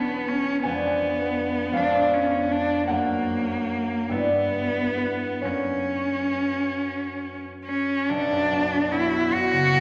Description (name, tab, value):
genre	classical, romantic duo for cello and harp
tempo	44-55 BPM (dotted quarters)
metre	6/8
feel	rubato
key	B minor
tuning	A4 = 440 Hz
part	rich cello	melody	0.0-9.8 s	A#3 to F#4	-26 LUFS	equal	none
part	concert harp	accompaniment	0.0-9.8 s	B1 to B5	-28 LUFS	equal	none
room	wet concert hall reverb, RT60 2.2 s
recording	none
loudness	-24 LUFS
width	mono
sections	0.0-8.1 A section; 8.1-9.8 B section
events	none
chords	0.0 Em7; 0.6 Fdim7; 2.9 F#; 4.1 Em/G; 5.4 F#; 8.1 Bm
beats	| 0.64 1.74 | 2.90 4.11 | 5.44 6.77 | 8.10 9.31